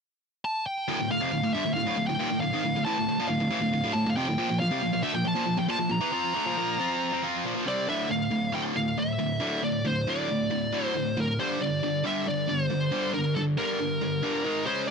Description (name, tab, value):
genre	metal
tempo	137 BPM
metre	4/4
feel	straight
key	D minor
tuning	A4 = 440 Hz
part	high-gain lead guitar	melody	0.4-14.9 s	A4 to Bb5	-29 LUFS	left 1 dB	distortion
part	high-gain distorted guitar	riff	0.9-14.9 s	D2 to F4	-27 LUFS	equal	distortion
room	little or no reverb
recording	dark, warm production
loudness	-25 LUFS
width	side -5 dB against mid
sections	0.9-7.9 A section; 7.9-14.9 B section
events	none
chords	0.0 N.C.; 0.9 Dm; 4.4 Bb5; 7.9 D5; 11.4 Gm; 14.5 G#5; 14.7 C#5